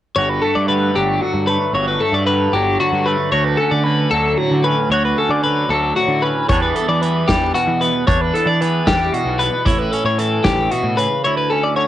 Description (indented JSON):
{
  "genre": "math rock and midwest emo",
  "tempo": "76 BPM (dotted quarters)",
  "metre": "6/8",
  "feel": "straight",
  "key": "D major",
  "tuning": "A4 = 440 Hz",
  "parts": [
    { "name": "twangy electric guitar", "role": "accompaniment", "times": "0.2-11.9 s", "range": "D2 to F#4", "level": "-20 LUFS", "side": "right 6 dB", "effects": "phaser" },
    { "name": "twelve-string electric guitar", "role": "arpeggios", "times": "0.2-11.9 s", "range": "F#4 to D5", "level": "-18 LUFS", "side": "left 4 dB", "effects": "none" },
    { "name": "fuzz picked electric bass", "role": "bass", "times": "0.2-11.1 s", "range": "G1 to E3", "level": "-22 LUFS", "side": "equal", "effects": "overdrive" },
    { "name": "loose indie drum kit", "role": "drums", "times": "6.5-11.1 s", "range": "hi-hat, kick drum, snare drum", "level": "-20 LUFS", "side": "equal", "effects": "cassette tape" }
  ],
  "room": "light reverb",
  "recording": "home recording on cassette",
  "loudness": "-14 LUFS",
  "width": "side -12 dB against mid",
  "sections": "0.2-11.9 A section",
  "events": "none",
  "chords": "0.2 Gmaj9; 3.3 Dmaj7; 6.5 Em7; 9.7 A7; 11.2 Dmaj7sus2"
}